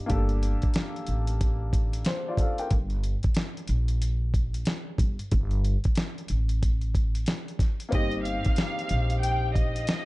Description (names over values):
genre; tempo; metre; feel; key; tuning
hip hop, boom-bap hip-hop; 92 BPM; 4/4; swing 62% on 16ths; G minor; A4 = 439 Hz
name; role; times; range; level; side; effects
warm upright piano; accompaniment; 0.0-2.7, 7.9-10.1 s; Bb3 to G5; -33 LUFS; left 2 dB; cassette tape, high-pass filter, low-pass filter
upright bass; bass; 0.1-9.8 s; G1 to Bb1; -27 LUFS; equal; none
dusty soul sampler-style drum kit; drums; 0.1-10.1 s; hi-hat, kick drum, snare drum; -26 LUFS; equal; none
warm studio violin section; melody; 7.9-10.1 s; Eb5 to G5; -31 LUFS; equal; high-pass filter, low-pass filter, tape echo
room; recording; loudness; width
little or no reverb; dark, warm production, nothing above 11.0 kHz; -24 LUFS; side -20 dB against mid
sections
0.0-7.9 A section; 7.9-10.1 B section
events
none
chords
0.1 Gmadd9; 2.7 Gm; 5.3 Gsus2; 7.9 Cm7/G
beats
| 0.10 0.75 1.40 2.05 | 2.71 3.36 4.01 4.66 | 5.31 5.97 6.62 7.27 | 7.92 8.57 9.23 9.88